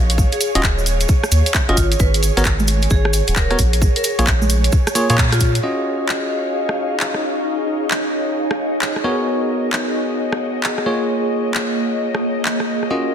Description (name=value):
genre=UK garage, two-step garage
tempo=132 BPM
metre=4/4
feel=swing 64% on 16ths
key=Eb minor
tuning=A4 = 440 Hz
part: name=airy breathy pad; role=sustained chords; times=0.0-13.1 s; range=Db5 to Eb5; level=-28 LUFS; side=left 2 dB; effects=chorus, sidechain pumping
part: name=soft dub sub bass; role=bass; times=0.0-5.6 s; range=Eb1 to Bb2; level=-17 LUFS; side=equal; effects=none
part: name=ethereal airy pad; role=texture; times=0.0-13.1 s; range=Bb3 to F5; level=-24 LUFS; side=right 2 dB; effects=ensemble chorus, built-in reverb, phaser, sidechain pumping
part: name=garage drum kit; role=drums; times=0.1-12.9 s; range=congas, handclaps, hi-hat, rim click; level=-22 LUFS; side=equal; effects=studio reverb
part: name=cabasa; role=percussion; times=0.1-5.6 s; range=none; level=-27 LUFS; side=right 4 dB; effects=none
part: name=electronic kick drum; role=drums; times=0.2-5.5 s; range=none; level=-17 LUFS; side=equal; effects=studio reverb
part: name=vibraphone with medium hard mallets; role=melody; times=0.3-5.5, 12.9-13.1 s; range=F4 to Cb5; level=-27 LUFS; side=left 2 dB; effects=digital delay
part: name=bell-like tine electric piano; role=stabs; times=0.6-13.1 s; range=Bb3 to Eb5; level=-23 LUFS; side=equal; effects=tape echo
room=moderate lush hall reverb, RT60 1.9 s, digital ambience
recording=dense, heavily limited modern master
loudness=-15 LUFS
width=side -8 dB against mid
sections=0.0-5.6 A section; 5.6-13.1 B section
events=band accent 5.2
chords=0.0 Eb7sus2; 1.8 Ab7sus4; 3.6 Bbm7; 5.6 Ebm9; 9.0 Abm11; 10.9 Bbm7